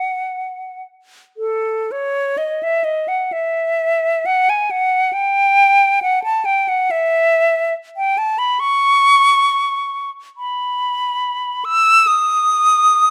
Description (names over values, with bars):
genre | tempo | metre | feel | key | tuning
classical, free, expressive piece for unaccompanied flute | 51-71 BPM | 4/4 | rubato | unclear | A4 = 440 Hz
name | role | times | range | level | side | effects
bright concert flute | solo | 0.0-13.1 s | A4 to E6 | -16 LUFS | equal | none
room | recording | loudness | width
light reverb | close, detailed microphones | -16 LUFS | mono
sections
0.0-13.1 A section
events
none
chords
none